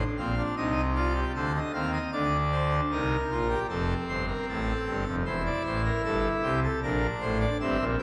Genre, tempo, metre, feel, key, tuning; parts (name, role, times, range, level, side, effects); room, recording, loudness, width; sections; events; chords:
classical, baroque-style 3-part fugue for pipe organ; 77 BPM; 4/4; straight; A4 = 440 Hz
pipe organ, full organ; solo; 0.0-8.0 s; E1 to F5; -28 LUFS; equal
wet scoring stage reverb, RT60 1.5 s; -28 LUFS; mono
0.0-8.0 A section
0.0 F5; 0.6 F7/C; 2.1 Bb/D; 3.7 F; 5.3 C/E; 6.8 C7